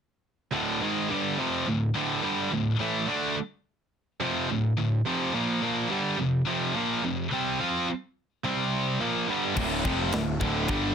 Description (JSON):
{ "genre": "heavy metal", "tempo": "106 BPM", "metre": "4/4", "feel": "straight", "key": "D minor", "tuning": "A4 = 440 Hz", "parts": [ { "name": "high-gain distorted guitar", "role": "riff", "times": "0.5-10.9 s", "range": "D2 to F4", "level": "-28 LUFS", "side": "right 6 dB", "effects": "distortion" }, { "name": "scooped high-gain guitar", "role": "riff", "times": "0.5-10.9 s", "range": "D2 to F4", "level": "-28 LUFS", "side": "left 8 dB", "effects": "distortion" }, { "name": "distorted electric guitar", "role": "riff", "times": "9.6-10.9 s", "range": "D2 to G3", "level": "-32 LUFS", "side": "left 1 dB", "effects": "overdrive" }, { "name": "fuzz picked electric bass", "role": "bass", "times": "9.6-10.9 s", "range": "D1 to G1", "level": "-31 LUFS", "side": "left 1 dB", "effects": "overdrive" }, { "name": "tight metal drum kit", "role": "drums", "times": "9.6-10.8 s", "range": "crash cymbal, kick drum, ride cymbal, snare drum", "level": "-31 LUFS", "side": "left 1 dB", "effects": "none" } ], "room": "light reverb", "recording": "none", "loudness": "-25 LUFS", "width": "side -7 dB against mid", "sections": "0.5-9.6 A section; 9.6-10.9 B section", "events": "none", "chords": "0.5 Dm; 5.1 F5; 8.4 C5; 9.0 Gm7; 9.6 Dm", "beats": "| 0.53 1.10 1.66 2.23 | 2.79 3.36 3.92 4.49 | 5.05 5.62 6.18 6.75 | 7.31 7.88 8.44 9.00 | 9.56 10.13 10.69" }